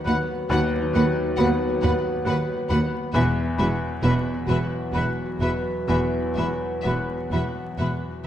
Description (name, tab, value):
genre	cinematic, emotional film score for orchestra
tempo	62-70 BPM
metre	3/4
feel	rubato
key	unclear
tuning	A4 = 440 Hz
part	clear grand piano	accompaniment	0.0-8.3 s	D#2 to B3	-29 LUFS	left 1 dB	none
part	mellow French horn section	sustained chords	0.0-8.3 s	F#3 to B4	-29 LUFS	left 1 dB	none
part	concert harp	arpeggios	0.0-8.3 s	D#3 to F#5	-34 LUFS	left 5 dB	none
part	clear studio violin section	melody	0.1-7.9 s	E5 to F#5	-36 LUFS	left 4 dB	none
part	clear oboe	second line	0.1-7.9 s	F#5	-35 LUFS	equal	none
part	clear studio violin section	second line	0.1-7.9 s	B4	-37 LUFS	left 1 dB	none
part	concert flute	second line	0.1-7.9 s	B5	-34 LUFS	left 2 dB	none
part	warm studio viola section	accompaniment	0.1-7.9 s	F#4	-34 LUFS	right 2 dB	none
part	rich studio cello section	bass	0.1-7.9 s	D#2 to E2	-28 LUFS	right 2 dB	none
part	rich studio double bass section	bass	0.1-7.9 s	E1 to D#2	-28 LUFS	right 1 dB	none
room	moderate scoring stage reverb, RT60 1.9 s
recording	dark, warm production, vinyl crackle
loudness	-21 LUFS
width	side -10 dB against mid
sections	0.0-8.3 A section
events	none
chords	0.0 B/D#; 3.1 Esus2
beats	| 0.51 1.40 2.27 | 3.15 4.03 4.94 | 5.88 6.85 7.79